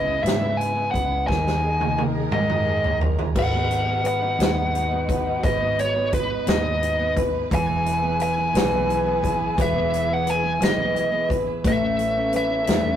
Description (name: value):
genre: six-eight pop ballad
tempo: 58 BPM (dotted quarters)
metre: 6/8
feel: straight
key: G# phrygian from 3.4 s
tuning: A4 = 443 Hz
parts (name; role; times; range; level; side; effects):
- biting lead guitar; melody; 0.0-13.0 s; B4 to G#5; -24 LUFS; equal; overdrive
- nylon-string guitar; accompaniment; 0.0-13.0 s; G#2 to B4; -26 LUFS; equal; none
- warm studio string section; sustained chords; 0.0-13.0 s; C#3 to B4; -33 LUFS; left 1 dB; none
- vintage muted fingered electric bass; bass; 0.0-13.0 s; E1 to G#2; -29 LUFS; equal; none
- natural country drum kit; drums; 0.3-12.8 s; crash cymbal, hi-hat, kick drum, snare drum, toms; -25 LUFS; equal; none
room: moderate small room reverb, RT60 0.5 s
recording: rough rehearsal-room recording, tube saturation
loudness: -20 LUFS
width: side -10 dB against mid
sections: 0.0-3.4 A section; 3.4-13.0 B section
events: drum fill 1.3-3.4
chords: 0.0 C#m7; 1.3 D#sus4; 3.4 G#m7; 7.5 E; 11.7 Aadd9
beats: 0.25 | 1.29 2.33 | 3.36 4.40 | 5.44 6.47 | 7.51 8.55 | 9.58 10.62 | 11.65 12.69